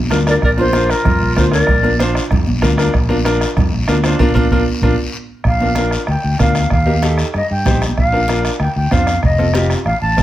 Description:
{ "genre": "latin, cumbia", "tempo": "191 BPM", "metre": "4/4", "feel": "straight", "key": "Bb major", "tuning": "A4 = 442 Hz", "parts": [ { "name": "fingered electric bass", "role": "bass", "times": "0.0-10.2 s", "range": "F1 to G2", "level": "-17 LUFS", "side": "equal", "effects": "none" }, { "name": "bright upright piano", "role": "accompaniment", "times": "0.1-10.2 s", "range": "C4 to C5", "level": "-19 LUFS", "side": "left 1 dB", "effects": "none" }, { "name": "bombo", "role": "percussion", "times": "0.1-10.2 s", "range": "none", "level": "-18 LUFS", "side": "right 1 dB", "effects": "none" }, { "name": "congas", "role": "percussion", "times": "0.1-10.2 s", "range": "none", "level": "-23 LUFS", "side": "right 2 dB", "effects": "none" }, { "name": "guiro", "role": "percussion", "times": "0.1-10.2 s", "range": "none", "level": "-29 LUFS", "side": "left 4 dB", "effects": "none" }, { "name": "concert flute", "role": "melody", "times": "0.3-2.0, 5.5-10.2 s", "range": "Bb4 to A5", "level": "-19 LUFS", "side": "equal", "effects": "plate reverb" }, { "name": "clear clarinet", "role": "second line", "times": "0.3-2.0 s", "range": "F4 to Bb4", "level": "-21 LUFS", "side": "right 2 dB", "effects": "none" } ], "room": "moderate studio reverb, RT60 0.8 s", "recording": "heard from further back in the room", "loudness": "-12 LUFS", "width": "side -13 dB against mid", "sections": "0.0-5.5 A section; 5.5-10.2 B section", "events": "band accent 4.2-5.5; upright piano fill 5.0-5.5", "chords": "0.0 Bb; 6.7 Eb; 8.0 Bb; 9.2 F7", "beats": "0.11 | 0.42 0.74 1.05 1.37 | 1.68 2.00 2.31 2.62 | 2.94 3.25 3.57 3.88 | 4.20 4.51 4.82 5.14 | 5.45 5.77 6.08 6.40 | 6.71 7.03 7.34 7.66 | 7.97 8.29 8.60 8.92 | 9.23 9.55 9.87 10.18" }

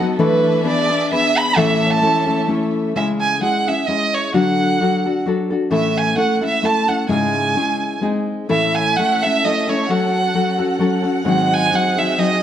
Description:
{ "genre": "mexican folk, mariachi", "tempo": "131 BPM", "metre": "3/4", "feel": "swing 54% on 8ths", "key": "C# minor", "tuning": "A4 = 440 Hz", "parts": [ { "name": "nylon-string guitar", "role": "accompaniment", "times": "0.0-12.4 s", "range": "G#2 to B4", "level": "-18 LUFS", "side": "left 2 dB", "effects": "none" }, { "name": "warm studio violin section", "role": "sustained chords", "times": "0.0-2.9, 8.5-12.4 s", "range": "B3 to F#5", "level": "-26 LUFS", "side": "equal", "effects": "none" }, { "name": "rich violin", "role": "melody", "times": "0.2-12.4 s", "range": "B4 to B5", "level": "-18 LUFS", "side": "right 4 dB", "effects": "none" } ], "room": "moderate recital hall reverb, RT60 1.5 s", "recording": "none", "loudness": "-15 LUFS", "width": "side -10 dB against mid", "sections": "0.0-3.0 A section; 3.0-12.4 B section", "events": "none", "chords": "0.2 E7sus4; 0.7 E7; 1.6 A; 3.0 C#m; 4.3 D; 5.7 A; 7.1 C#m/G#; 8.0 G#; 8.5 A; 9.9 F#m; 11.2 G#7", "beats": "| 0.20 0.65 1.11 | 1.56 2.02 2.48 | 2.95 3.42 3.88 | 4.33 4.79 5.25 | 5.71 6.17 6.62 | 7.08 7.55 8.02 | 8.49 8.96 9.42 | 9.87 10.33 10.79 | 11.25 11.71 12.17" }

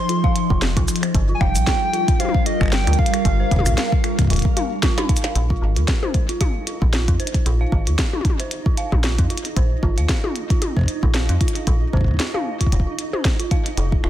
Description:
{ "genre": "IDM", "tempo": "114 BPM", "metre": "4/4", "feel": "swing 56% on 16ths", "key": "unclear", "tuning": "A4 = 440 Hz", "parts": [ { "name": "warbly nostalgic lead", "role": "melody", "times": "0.0-4.8 s", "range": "Eb5 to C6", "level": "-24 LUFS", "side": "equal", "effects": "lush chorus, tape echo" }, { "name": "glassy FM pad", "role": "sustained chords", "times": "0.0-5.4, 13.8-14.1 s", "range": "F3 to F5", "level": "-26 LUFS", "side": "left 1 dB", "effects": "ensemble chorus, built-in reverb" }, { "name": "dark detuned synth bell", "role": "arpeggios", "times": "0.1-14.1 s", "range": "Eb4 to F5", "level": "-29 LUFS", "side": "right 3 dB", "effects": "chorus, phaser, tape echo" }, { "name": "glitchy drum kit", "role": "drums", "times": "0.1-14.1 s", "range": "cabasa, finger snaps, hi-hat, snare drum, toms", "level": "-25 LUFS", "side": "left 2 dB", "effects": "studio reverb, tape echo" }, { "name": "electronic kick drum", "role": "drums", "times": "0.2-14.0 s", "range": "none", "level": "-19 LUFS", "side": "equal", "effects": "studio reverb" }, { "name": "metallic FM bass", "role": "bass", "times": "0.5-14.1 s", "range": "D1 to F2", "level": "-20 LUFS", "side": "equal", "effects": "none" }, { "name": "flickering grainy texture", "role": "texture", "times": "6.3-14.1 s", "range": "Eb4", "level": "-33 LUFS", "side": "right 3 dB", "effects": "built-in reverb" } ], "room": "digital ambience", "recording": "dense, heavily limited modern master", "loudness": "-17 LUFS", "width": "side -12 dB against mid", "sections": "0.0-5.4 A section; 5.4-14.1 B section", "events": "drum fill 4.8-5.4", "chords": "0.0 Fm7; 1.1 Ebmaj9 (rootless); 5.4 Bbsus4", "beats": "0.09 0.62 | 1.15 1.67 2.20 2.72 | 3.25 3.78 4.30 4.83 | 5.36 5.88 6.41 6.93 | 7.46 7.99 8.51 9.04 | 9.57 10.09 10.62 11.14 | 11.67 12.20 12.72 13.25 | 13.78" }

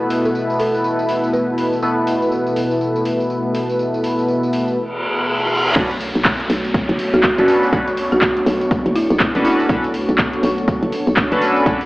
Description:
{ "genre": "deep house", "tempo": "122 BPM", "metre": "4/4", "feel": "swing 60% on 16ths", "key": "B minor", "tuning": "A4 = 441 Hz", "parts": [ { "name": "dark analog pad", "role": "sustained chords", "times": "0.0-11.9 s", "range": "B2 to C#5", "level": "-25 LUFS", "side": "equal", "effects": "chorus, sidechain pumping" }, { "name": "chorused polysynth", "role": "stabs", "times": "0.0-11.8 s", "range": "B2 to B4", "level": "-19 LUFS", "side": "equal", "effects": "cassette tape, sidechain pumping, tape echo" }, { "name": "ethereal airy pad", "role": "texture", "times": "0.0-11.9 s", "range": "B3 to C#6", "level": "-27 LUFS", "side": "equal", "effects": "ensemble chorus, built-in reverb, phaser, sidechain pumping" }, { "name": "deep house drum kit", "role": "drums", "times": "0.1-11.9 s", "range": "crash cymbal, handclaps, hi-hat, tambourine", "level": "-24 LUFS", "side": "equal", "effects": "overdrive" }, { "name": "folk marimba with medium mallets", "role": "melody", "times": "0.3-2.0, 7.1-9.9 s", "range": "E4 to B4", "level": "-20 LUFS", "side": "equal", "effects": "analog delay" }, { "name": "reverse cymbal and downlifter", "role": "sound effects", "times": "4.9-9.7 s", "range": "none", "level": "-22 LUFS", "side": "equal", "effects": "none" }, { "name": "hollow knocking FM bass", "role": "bass", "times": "5.8-11.9 s", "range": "F#1 to B1", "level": "-20 LUFS", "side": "equal", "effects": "tube saturation, sidechain pumping" }, { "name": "electronic kick drum", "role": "drums", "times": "5.8-11.8 s", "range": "none", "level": "-21 LUFS", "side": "equal", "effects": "overdrive" } ], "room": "moderate lush hall reverb, RT60 2.1 s", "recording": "played on a big sound system in a bare room, stone room reverb, AM radio sound", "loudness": "-15 LUFS", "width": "side -20 dB against mid", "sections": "0.0-5.8 A section; 5.8-11.9 B section", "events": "reverse cymbal 4.9-5.8; drop 5.8-11.9", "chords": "0.0 Asus2/B; 5.8 Bm9", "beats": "0.35 0.84 1.33 | 1.82 2.32 2.81 3.30 | 3.79 4.28 4.78 5.27 | 5.76 6.25 6.74 7.23 | 7.73 8.22 8.71 9.20 | 9.69 10.19 10.68 11.17 | 11.66" }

